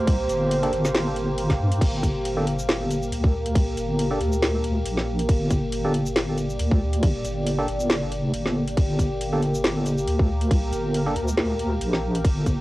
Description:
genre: deep dubstep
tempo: 138 BPM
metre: 4/4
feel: swing 55% on 16ths, half-time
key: G minor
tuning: A4 = 437 Hz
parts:
  - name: deep dark ambient pad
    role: sustained chords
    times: 0.0-12.6 s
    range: Bb3 to D5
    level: -27 LUFS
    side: equal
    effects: chorus, built-in reverb, cassette tape
  - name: deep soft wobble bass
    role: bass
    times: 0.0-12.6 s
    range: G1 to G2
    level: -25 LUFS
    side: equal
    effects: chorus, transformer saturation
  - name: electronic kick drum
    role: drums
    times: 0.1-12.6 s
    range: none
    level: -20 LUFS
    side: equal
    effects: none
  - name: garage drum kit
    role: drums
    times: 0.1-12.6 s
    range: crash cymbal, hi-hat, shaker, snare drum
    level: -29 LUFS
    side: equal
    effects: none
  - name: percussive organ stab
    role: stabs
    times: 0.6-11.1 s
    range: Bb3 to A4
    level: -30 LUFS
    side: right 1 dB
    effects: chorus, cassette tape, dub echo
room: light reverb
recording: home recording on cassette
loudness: -21 LUFS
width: side -18 dB against mid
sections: 0.0-12.6 A section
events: none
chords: 0.0 Gmadd9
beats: | 0.08 0.51 0.94 1.38 | 1.81 2.25 2.68 3.12 | 3.55 3.99 4.42 4.86 | 5.29 5.73 6.16 6.60 | 7.03 7.47 7.90 8.34 | 8.77 9.21 9.64 10.08 | 10.51 10.95 11.38 11.81 | 12.25

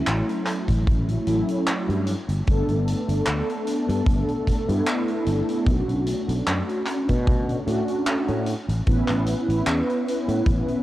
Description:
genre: vaporwave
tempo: 75 BPM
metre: 4/4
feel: swing 54% on 16ths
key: unclear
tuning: A4 = 440 Hz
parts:
  - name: mellow synth brass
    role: accompaniment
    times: 0.0-10.8 s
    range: F#3 to B4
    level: -24 LUFS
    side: equal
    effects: analog chorus, tape echo
  - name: sustaining fretless electric bass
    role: bass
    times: 0.1-10.6 s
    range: G1 to B2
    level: -24 LUFS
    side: equal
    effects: lush chorus
  - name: big rock drum kit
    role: drums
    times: 0.1-10.8 s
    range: handclaps, hi-hat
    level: -31 LUFS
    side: equal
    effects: none
  - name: kick drum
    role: drums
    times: 0.7-10.6 s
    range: none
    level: -23 LUFS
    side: equal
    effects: none
room: light reverb, studio reverb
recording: worn, warbling old tape, cassette tape, warbly pitch drift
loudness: -21 LUFS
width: side -15 dB against mid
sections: 0.0-10.8 A section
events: none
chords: 0.0 Dmaj9 (rootless); 2.1 G69; 5.7 Bm9; 8.5 Aadd9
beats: 0.07 0.87 1.67 | 2.47 3.27 4.07 4.87 | 5.67 6.47 7.27 8.07 | 8.87 9.67 10.47

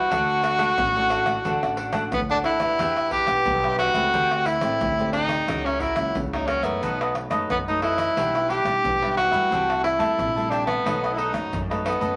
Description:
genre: samba and choro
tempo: 89 BPM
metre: 4/4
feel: straight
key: E minor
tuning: A4 = 440 Hz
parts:
  - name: breathy tenor saxophone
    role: melody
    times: 0.0-12.2 s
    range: B3 to G4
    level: -25 LUFS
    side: equal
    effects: none
  - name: cavaquinho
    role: accompaniment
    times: 0.0-12.2 s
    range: D4 to A5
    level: -31 LUFS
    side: equal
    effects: none
  - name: nylon-string guitar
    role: accompaniment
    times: 0.0-12.2 s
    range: F#2 to G4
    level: -34 LUFS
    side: equal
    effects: none
  - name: upright bass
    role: bass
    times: 0.1-12.2 s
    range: A1 to G2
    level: -36 LUFS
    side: equal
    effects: none
  - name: tube shaker, surdo, pandeiro and tamborim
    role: percussion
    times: 0.1-12.2 s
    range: none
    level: -34 LUFS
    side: equal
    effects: none
room: wet studio reverb, RT60 0.7 s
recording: none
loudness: -23 LUFS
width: mono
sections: 0.0-2.8 A section; 2.8-12.2 B section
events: none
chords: 0.1 D; 2.8 Em7; 4.1 D7sus4; 5.5 F#7/C#; 6.8 B7; 8.2 Em7/B; 9.5 Am7/C; 10.9 B7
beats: | 0.11 0.78 1.45 2.12 | 2.79 3.47 4.14 4.81 | 5.48 6.16 6.83 7.50 | 8.17 8.85 9.52 10.19 | 10.86 11.54

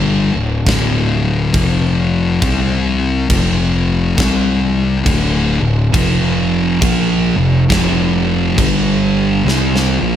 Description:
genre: stoner and doom metal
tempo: 68 BPM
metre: 4/4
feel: swing 63% on 8ths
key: unclear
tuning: A4 = 440 Hz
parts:
  - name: thick fuzz guitar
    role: riff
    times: 0.0-10.2 s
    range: D2 to C4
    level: -16 LUFS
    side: left 5 dB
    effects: distortion
  - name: fuzz picked electric bass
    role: bass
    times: 0.0-10.2 s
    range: D1 to C2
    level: -18 LUFS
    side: right 1 dB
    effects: overdrive
  - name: big rock drum kit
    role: drums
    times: 0.7-10.0 s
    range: crash cymbal, kick drum, snare drum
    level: -19 LUFS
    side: right 1 dB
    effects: none
  - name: thick fuzz guitar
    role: riff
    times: 5.9-10.2 s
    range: F2 to C4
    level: -18 LUFS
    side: right 13 dB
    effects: distortion
room: little or no reverb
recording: none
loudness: -12 LUFS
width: side -10 dB against mid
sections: 0.0-10.2 A section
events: drum fill 9.5-10.2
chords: 0.0 D5; 1.5 F5; 2.4 C5; 3.3 F5; 4.2 C5; 5.1 D5; 5.9 F5; 8.6 G5; 9.5 F5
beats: 0.66 1.54 | 2.42 3.30 4.18 5.06 | 5.94 6.82 7.70 8.57 | 9.45

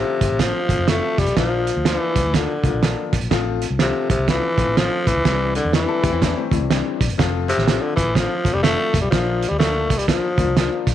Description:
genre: uptempo 1960s-style soul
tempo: 124 BPM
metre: 4/4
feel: swing 61% on 8ths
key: F major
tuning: A4 = 445 Hz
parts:
  - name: growling tenor saxophone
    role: melody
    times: 0.0-10.8 s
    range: C3 to A3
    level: -21 LUFS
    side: left 1 dB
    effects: none
  - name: clear baby grand piano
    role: accompaniment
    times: 0.0-10.9 s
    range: E3 to F4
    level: -26 LUFS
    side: left 11 dB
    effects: none
  - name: vintage muted fingered electric bass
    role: bass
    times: 0.0-10.9 s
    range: F1 to E2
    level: -24 LUFS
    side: left 1 dB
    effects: tube saturation
  - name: cloth-damped thuddy drum kit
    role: drums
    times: 0.2-10.9 s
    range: hi-hat, kick drum, snare drum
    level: -21 LUFS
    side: right 4 dB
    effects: none
  - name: hollow-body jazz guitar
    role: riff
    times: 5.9-7.1 s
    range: A3 to A4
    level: -27 LUFS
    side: left 13 dB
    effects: none
room: light reverb, small room reverb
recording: 1960s-style stereo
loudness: -17 LUFS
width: side -11 dB against mid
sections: 0.0-10.9 A section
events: none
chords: 0.0 F; 1.4 Bb; 3.3 F/A; 5.3 C; 7.2 F; 9.1 Bb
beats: 0.40 0.89 | 1.37 1.86 2.34 2.83 | 3.31 3.80 4.28 4.77 | 5.25 5.74 6.22 6.71 | 7.19 7.67 8.15 8.64 | 9.12 9.60 10.09 10.57

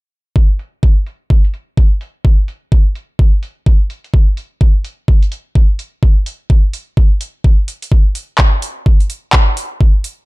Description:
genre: bass house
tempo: 127 BPM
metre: 4/4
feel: swing 61% on 16ths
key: none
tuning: none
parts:
  - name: electronic kick drum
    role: drums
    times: 0.4-9.9 s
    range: none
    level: -10 LUFS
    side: equal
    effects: none
  - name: garage drum kit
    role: drums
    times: 0.6-10.2 s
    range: handclaps, hi-hat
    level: -19 LUFS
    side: equal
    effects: low-pass filter on hats, low-pass filter on snare, low-pass filter on room
room: little or no reverb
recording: dark, warm production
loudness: -12 LUFS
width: side -23 dB against mid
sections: 0.4-10.3 A section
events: filter sweep on drum 0.4-10.3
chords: none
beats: | 0.36 0.83 1.30 1.77 | 2.25 2.72 3.19 3.66 | 4.14 4.61 5.08 5.55 | 6.03 6.50 6.97 7.44 | 7.92 8.39 8.86 9.33 | 9.81

